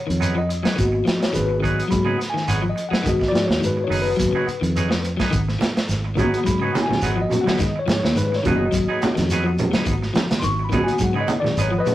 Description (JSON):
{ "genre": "afrobeat", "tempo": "106 BPM", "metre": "4/4", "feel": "swing 53% on 16ths", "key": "G# dorian", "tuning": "A4 = 441 Hz", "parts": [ { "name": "mellow tine electric piano", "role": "accompaniment", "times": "0.0-11.9 s", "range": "A#3 to C#6", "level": "-24 LUFS", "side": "left 1 dB", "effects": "medium stereo tremolo" }, { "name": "electric guitar at the edge of break-up", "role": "arpeggios", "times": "0.0-11.9 s", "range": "C#3 to F#3", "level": "-26 LUFS", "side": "left 3 dB", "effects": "none" }, { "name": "clean electric guitar", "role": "stabs", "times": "0.1-11.9 s", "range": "F#3 to G#4", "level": "-28 LUFS", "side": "right 3 dB", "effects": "none" }, { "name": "fingered electric bass", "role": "bass", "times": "0.1-11.8 s", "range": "F#1 to G#2", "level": "-24 LUFS", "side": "right 1 dB", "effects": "none" }, { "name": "crunchy breakbeat drum kit", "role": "drums", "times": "0.1-11.9 s", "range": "hi-hat, kick drum, snare drum", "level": "-25 LUFS", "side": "right 1 dB", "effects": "none" }, { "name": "shekere", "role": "percussion", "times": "0.2-11.9 s", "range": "none", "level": "-31 LUFS", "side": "equal", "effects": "none" }, { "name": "congas", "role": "percussion", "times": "5.6-11.9 s", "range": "none", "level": "-24 LUFS", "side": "right 2 dB", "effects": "none" } ], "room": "moderate stone room reverb, RT60 0.9 s", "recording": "rough rehearsal-room recording, tube saturation", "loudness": "-18 LUFS", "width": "side -14 dB against mid", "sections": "0.0-11.9 A section", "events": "tine electric piano solo 0.0-11.9", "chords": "0.0 G#m7" }